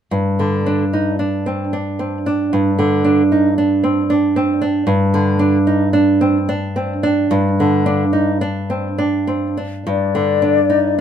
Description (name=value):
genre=romantic duo for flute and classical guitar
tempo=65-78 BPM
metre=3/4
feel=rubato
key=unclear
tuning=A4 = 440 Hz
part: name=nylon-string guitar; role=accompaniment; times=0.1-11.0 s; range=G2 to Eb4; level=-14 LUFS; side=right 1 dB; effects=none
part: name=concert flute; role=melody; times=9.9-11.0 s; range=D5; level=-16 LUFS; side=left 15 dB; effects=none
room=light reverb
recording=minimal, uncompressed stereo recording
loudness=-14 LUFS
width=side -8 dB against mid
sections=0.1-9.9 A section; 9.9-11.0 B section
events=none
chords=0.1 G5